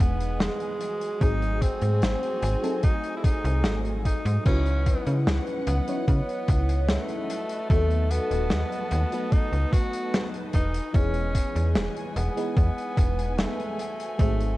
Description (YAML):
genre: vaporwave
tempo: 74 BPM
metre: 4/4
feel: straight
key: E major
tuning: A4 = 440 Hz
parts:
  - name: breathy tenor saxophone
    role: melody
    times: 0.0-14.6 s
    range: G#3 to F#4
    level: -32 LUFS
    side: equal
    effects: tape echo
  - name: FM electric piano with soft pad layer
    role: accompaniment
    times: 0.0-14.6 s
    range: E3 to C#5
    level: -32 LUFS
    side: left 1 dB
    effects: phaser, lush chorus
  - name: dark studio string section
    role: sustained chords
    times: 0.0-14.6 s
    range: E3 to A5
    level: -39 LUFS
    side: left 2 dB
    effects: vintage 12-bit sampler grit
  - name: slap-like FM bass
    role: bass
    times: 0.0-14.6 s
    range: D#1 to C#3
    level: -25 LUFS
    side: equal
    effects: none
  - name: big rock drum kit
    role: drums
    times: 0.0-14.6 s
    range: crash cymbal, hi-hat, snare drum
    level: -31 LUFS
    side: equal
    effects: vintage 12-bit sampler grit
  - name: electronic kick drum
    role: drums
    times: 1.2-14.4 s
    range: none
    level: -22 LUFS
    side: equal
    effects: vintage 12-bit sampler grit
room: light reverb, small room ambience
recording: cassette tape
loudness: -23 LUFS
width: side -18 dB against mid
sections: 0.0-14.6 A section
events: none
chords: 0.0 Emaj7; 0.8 G#7b9; 4.5 C#m11; 7.3 B7/D#; 10.5 Emaj7; 13.8 G#7b9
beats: 0.40 | 1.21 2.02 2.83 3.65 | 4.46 5.27 6.08 6.89 | 7.70 8.51 9.32 10.13 | 10.94 11.75 12.56 13.38 | 14.19